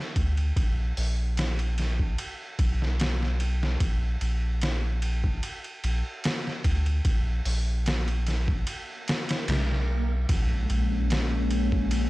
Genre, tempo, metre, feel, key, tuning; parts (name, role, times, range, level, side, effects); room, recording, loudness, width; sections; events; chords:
trip hop; 74 BPM; 4/4; swing 53% on 16ths; Bb phrygian; A4 = 440 Hz
soft dub sub bass; bass; 0.2-12.1 s; Bb1 to D2; -26 LUFS; equal
trip hop sampler-style drum kit; drums; 0.2-12.1 s; hi-hat, kick drum, ride cymbal, snare drum; -29 LUFS; equal; overdrive
swell and impact; sound effects; 9.0-12.1 s; -37 LUFS; right 1 dB
warbly tape-like pad; sustained chords; 10.6-12.1 s; Ab3 to Db4; -29 LUFS; left 3 dB; chorus, built-in reverb
little or no reverb; dry, gritty hardware recording, cassette tape; -24 LUFS; side -19 dB against mid
0.0-10.3 A section; 10.3-12.1 B section
swell 9.0-10.3; impact 10.3-12.1
0.0 N.C.; 5.4 Bb; 7.1 N.C.; 10.3 Bbm7